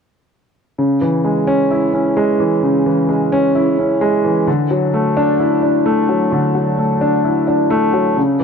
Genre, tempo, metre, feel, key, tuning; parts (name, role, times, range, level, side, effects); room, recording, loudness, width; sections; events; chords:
hip hop; 130 BPM; 4/4; half-time; C# phrygian; A4 = 440 Hz
dark concert grand piano; accompaniment; 0.8-8.4 s; C#3 to E4; -13 LUFS; equal; low-pass filter
light reverb, studio ambience; -13 LUFS; side -6 dB against mid
0.8-8.4 A section
0.8 C#m; 4.5 Dadd9